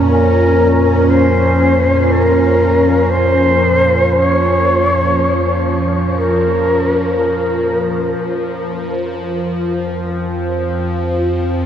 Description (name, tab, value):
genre	ambient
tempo	free time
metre	none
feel	none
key	unclear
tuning	A4 = 440 Hz
part	evolving wavetable pad	sustained chords	0.0-11.7 s	Bb2 to G4	-16 LUFS	equal	phaser, built-in reverb, shimmer reverb
part	warm sub bass	bass	0.0-11.7 s	F2	-19 LUFS	equal	none
part	shakuhachi	melody	0.1-8.2 s	Bb4 to Db5	-15 LUFS	equal	shimmer reverb, ping-pong delay
room	wet huge ambient reverb, RT60 8.6 s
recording	worn, warbling old tape, cassette tape, warbly pitch drift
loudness	-12 LUFS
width	side -9 dB against mid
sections	0.0-11.7 A section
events	none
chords	0.0 Bbm/F; 8.2 F5